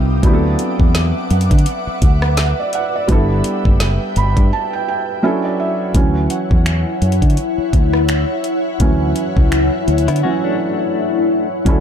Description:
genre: contemporary R&B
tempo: 84 BPM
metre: 4/4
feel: swing 58% on 16ths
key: D major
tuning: A4 = 440 Hz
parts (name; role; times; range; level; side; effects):
- felt-muted upright piano; accompaniment; 0.0-11.8 s; E3 to B5; -20 LUFS; right 3 dB; none
- ethereal airy pad; sustained chords; 0.0-11.8 s; C4 to Eb6; -20 LUFS; left 2 dB; ensemble chorus, built-in reverb
- fingered electric bass; bass; 0.0-11.8 s; F#1 to D3; -16 LUFS; equal; none
- smooth R&B drum kit; drums; 0.2-11.8 s; finger snaps, hi-hat, kick drum, rim click, snare drum; -16 LUFS; equal; none
- glassy wavetable pluck; texture; 2.7-7.9 s; E5 to F#5; -33 LUFS; right 4 dB; none
- direct-recorded clean electric guitar; arpeggios; 10.1-11.5 s; A3 to F#4; -23 LUFS; left 8 dB; tremolo
room: digital ambience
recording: dark, warm production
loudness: -13 LUFS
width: side -8 dB against mid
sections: 0.0-5.9 A section; 5.9-11.7 B section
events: felt piano fill 3.8-5.9; break 4.5-5.9, 10.2-11.7; felt piano solo 5.9-11.7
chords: 0.2 D69; 3.1 G6; 5.2 Dmaj9

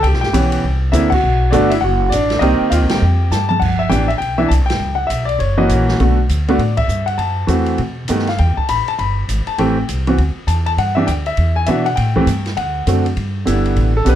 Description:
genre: jazz piano trio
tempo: 201 BPM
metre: 4/4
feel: swing 62% on 8ths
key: G major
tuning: A4 = 439 Hz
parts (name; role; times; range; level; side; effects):
- clear grand piano; melody; 0.0-14.2 s; D3 to B5; -16 LUFS; equal; none
- upright bass; bass; 0.0-14.2 s; F#1 to B2; -17 LUFS; equal; none
- open jazz drum kit; drums; 0.0-14.1 s; crash cymbal, hi-hat, kick drum, ride cymbal, snare drum, toms; -25 LUFS; right 2 dB; none
room: light reverb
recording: dark, warm production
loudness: -14 LUFS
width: side -11 dB against mid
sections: 0.0-3.6 A section; 3.6-13.2 B section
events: band accent 1.1, 2.9, 4.7, 6.7; drum fill 3.3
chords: 0.0 C#m7b5; 0.6 C9; 1.2 Bm7; 2.4 Cm7; 3.0 Fsus2; 3.6 G6; 4.8 Bmadd9; 5.4 F#7; 6.0 Bm7; 7.2 F#m7b5; 7.8 Baug7; 8.4 Em; 9.6 Am7; 10.2 Dsus2; 10.8 G5; 11.4 E5; 12.0 A7(no3); 12.6 D7; 13.2 G6

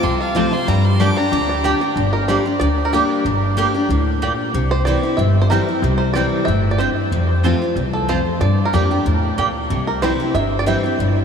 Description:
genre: bluegrass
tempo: 186 BPM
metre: 4/4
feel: straight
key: G dorian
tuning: A4 = 436 Hz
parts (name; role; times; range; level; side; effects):
- bluegrass banjo; melody; 0.0-11.0 s; G3 to E5; -23 LUFS; right 3 dB; analog delay
- bright fiddle; melody; 0.0-1.6 s; F5 to D6; -28 LUFS; left 2 dB; analog delay
- picked steel-string acoustic guitar; accompaniment; 0.0-11.2 s; E2 to G4; -19 LUFS; left 3 dB; none
- upright bass; bass; 0.0-11.2 s; G1 to G2; -20 LUFS; equal; none
- mandolin; stabs; 0.4-10.8 s; Bb3 to A5; -24 LUFS; right 4 dB; none
room: wet huge ambient reverb, RT60 8.0 s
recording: dreamy mix soaked in reverb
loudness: -15 LUFS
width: side -7 dB against mid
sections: 0.0-2.0 A section; 2.0-11.2 A section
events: fiddle solo 0.0-2.0; five-string banjo solo 2.0-11.2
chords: 0.0 F; 0.7 Gm; 4.5 C; 7.1 F; 8.4 Gm; 9.7 C

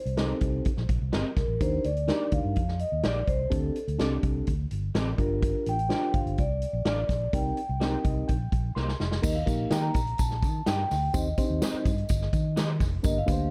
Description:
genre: uptempo 1960s-style soul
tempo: 126 BPM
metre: 4/4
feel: straight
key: unclear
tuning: A4 = 441 Hz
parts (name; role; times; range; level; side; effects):
- vibraphone with soft mallets; melody; 0.0-13.5 s; A4 to Bb5; -35 LUFS; equal; tape echo
- fingered electric bass; bass; 0.1-13.5 s; F1 to Eb3; -32 LUFS; equal; none
- swinging big-band drum kit; drums; 0.1-13.4 s; crash cymbal, hi-hat, kick drum, snare drum; -31 LUFS; equal; vintage 12-bit sampler grit
- reed electric piano; accompaniment; 0.2-13.5 s; Bb3 to C6; -34 LUFS; equal; none
- electric guitar through a small old amp; stabs; 0.2-12.7 s; Bb3 to Eb5; -38 LUFS; equal; ensemble chorus
- tambourine; percussion; 9.2-13.4 s; none; -48 LUFS; equal; none
room: light reverb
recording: dark, warm production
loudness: -27 LUFS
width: mono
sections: 0.0-9.2 A section; 9.2-13.5 B section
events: reed electric piano fill 7.8-9.2; drum fill 8.8-9.2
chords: 0.0 Cm7; 1.6 Ebmaj7; 3.5 D7sus4; 5.2 Gm7; 7.3 Cm7; 9.2 Eb; 11.1 Cm/Eb

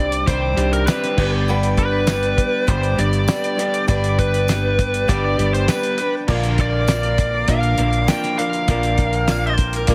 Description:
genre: folk rock and heartland rock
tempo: 100 BPM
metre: 4/4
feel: straight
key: unclear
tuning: A4 = 440 Hz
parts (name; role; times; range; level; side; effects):
- biting lead guitar; melody; 0.0-9.5 s; Bb4 to G5; -24 LUFS; equal; overdrive
- dark upright piano; accompaniment; 0.0-9.9 s; C4 to B5; -35 LUFS; equal; none
- picked old ladder-braced acoustic guitar; accompaniment; 0.0-9.9 s; G2 to B4; -28 LUFS; equal; none
- accordion; sustained chords; 0.0-9.9 s; C4 to D6; -33 LUFS; equal; none
- electric guitar through a small old amp; riff; 0.0-9.9 s; G2 to Bb4; -29 LUFS; equal; none
- hollow-body short-scale fingered electric bass; bass; 0.0-9.9 s; G1 to C2; -23 LUFS; equal; none
- cloth-damped thuddy drum kit; drums; 0.1-9.9 s; crash cymbal, hi-hat, kick drum, snare drum; -24 LUFS; equal; none
- tambourine; percussion; 0.9-9.4 s; none; -38 LUFS; equal; none
- mandolin; second line; 9.3-9.9 s; Bb4 to F5; -27 LUFS; equal; none
room: little or no reverb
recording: heavily compressed radio sound, multiband compression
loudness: -19 LUFS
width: mono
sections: 0.0-9.9 A section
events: none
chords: 0.0 Cmadd9; 1.2 G; 6.3 Bb

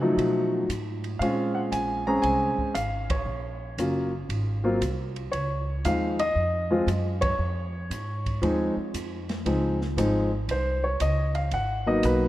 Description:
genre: jazz piano trio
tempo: 116 BPM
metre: 4/4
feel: swing 67% on 8ths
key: Db major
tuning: A4 = 440 Hz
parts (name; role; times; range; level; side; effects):
- warm grand piano; melody; 0.0-12.3 s; F3 to Bb5; -26 LUFS; equal; none
- upright bass; bass; 0.0-12.3 s; Gb1 to Db3; -29 LUFS; equal; none
- open jazz drum kit; drums; 0.2-12.2 s; hi-hat, kick drum, ride cymbal, snare drum; -37 LUFS; right 1 dB; none
room: moderate lush hall reverb, RT60 2.5 s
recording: rough home demo mix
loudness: -24 LUFS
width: side -15 dB against mid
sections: 0.0-9.5 A section; 9.5-12.3 B section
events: band accent 3.0, 7.1; grand piano solo 9.5-12.3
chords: 0.2 Cb7#11; 1.2 Bbm9; 3.3 Gbmaj7; 4.3 Ab; 5.3 Dbadd9; 9.5 Dbmaj9; 11.5 Abm7

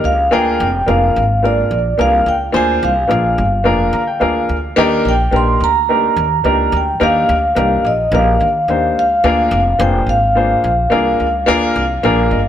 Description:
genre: uptempo 1960s-style soul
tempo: 108 BPM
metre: 4/4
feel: straight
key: unclear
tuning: A4 = 439 Hz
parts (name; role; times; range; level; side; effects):
- vibraphone with soft mallets; melody; 0.0-12.5 s; D5 to C6; -16 LUFS; right 1 dB; none
- warm baby grand piano; accompaniment; 0.0-12.5 s; Bb3 to Bb5; -16 LUFS; left 2 dB; none
- upright bass; bass; 0.0-12.5 s; F1 to Eb3; -19 LUFS; equal; none
room: light reverb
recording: none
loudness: -12 LUFS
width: side -10 dB against mid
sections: 0.0-12.5 A section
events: grand piano fill 3.7-4.8, 12.0-12.5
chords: 0.3 Bb7; 4.8 Ebmaj7; 9.2 Bb7

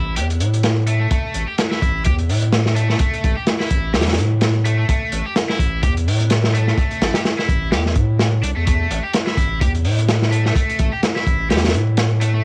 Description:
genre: breakbeat, breaks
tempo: 127 BPM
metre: 4/4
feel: swing 56% on 16ths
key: unclear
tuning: A4 = 439 Hz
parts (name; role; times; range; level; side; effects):
- cranked stack guitar; riff; 0.0-12.4 s; A3 to G4; -28 LUFS; equal; overdrive, low-pass filter, cassette tape, analog delay
- saturated sub bass; bass; 0.0-12.4 s; A1 to A2; -21 LUFS; equal; none
- crunchy breakbeat drum kit; drums; 0.2-12.3 s; hi-hat, kick drum, snare drum; -21 LUFS; equal; cassette tape
room: light reverb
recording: home recording on cassette, vinyl crackle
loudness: -18 LUFS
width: mono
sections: 0.0-12.4 A section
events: none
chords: 0.0 A5

